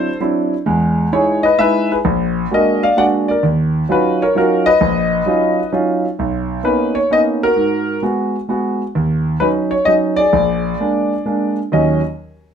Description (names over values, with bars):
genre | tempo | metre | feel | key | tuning
jazz | 130 BPM | 3/4 | swing 66% on 8ths | Eb minor | A4 = 440 Hz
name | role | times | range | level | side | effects
warm concert grand piano | solo | 0.0-12.0 s | Bb1 to Gb5 | -14 LUFS | equal | none
room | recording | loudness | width
light reverb | none | -14 LUFS | side -7 dB against mid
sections
0.0-6.2 A section; 6.2-11.7 B section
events
none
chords
0.0 D9; 0.7 Emaj7; 2.0 Bb7b13; 3.4 Ebm9; 6.2 Bmaj9; 7.6 Abm7; 9.0 Ebm7; 10.3 Bb7; 11.7 Ebm7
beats
0.21 | 0.67 1.13 1.59 | 2.05 2.50 2.96 | 3.42 3.88 4.34 | 4.80 5.26 5.72 | 6.18 6.65 7.11 | 7.57 8.03 8.49 | 8.95 9.41 9.87 | 10.33 10.79 11.26 | 11.71